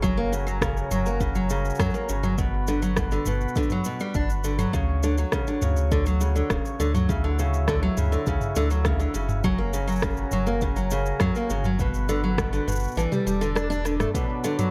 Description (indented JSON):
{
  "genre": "folktronica",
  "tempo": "102 BPM",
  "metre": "4/4",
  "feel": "straight",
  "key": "D major",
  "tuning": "A4 = 440 Hz",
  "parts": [
    { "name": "mellow accordion", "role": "sustained chords", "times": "0.0-14.7 s", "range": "F#3 to C#5", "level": "-36 LUFS", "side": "equal", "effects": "none" },
    { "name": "picked steel-string acoustic guitar", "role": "arpeggios", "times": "0.0-14.7 s", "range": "B2 to D4", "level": "-29 LUFS", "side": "equal", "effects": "delay" },
    { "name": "warm sub bass", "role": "bass", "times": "0.0-14.1 s", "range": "D1 to F#2", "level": "-28 LUFS", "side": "equal", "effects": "none" },
    { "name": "electronic kick drum", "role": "drums", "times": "0.0-14.3 s", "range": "none", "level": "-31 LUFS", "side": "equal", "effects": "none" },
    { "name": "organic electronic drum kit", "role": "drums", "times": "0.0-14.7 s", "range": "hi-hat, rim click, shaker, toms", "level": "-33 LUFS", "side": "equal", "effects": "none" }
  ],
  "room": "digital ambience",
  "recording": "none",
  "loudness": "-25 LUFS",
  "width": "mono",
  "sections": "0.0-14.1 A section",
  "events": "kick drops out 13.0-14.1; drum fill 13.9",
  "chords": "0.0 F#; 2.4 Gmaj7; 4.7 Dmaj7; 9.4 F#; 11.8 Gmaj7; 13.0 A7sus4; 14.1 Bm"
}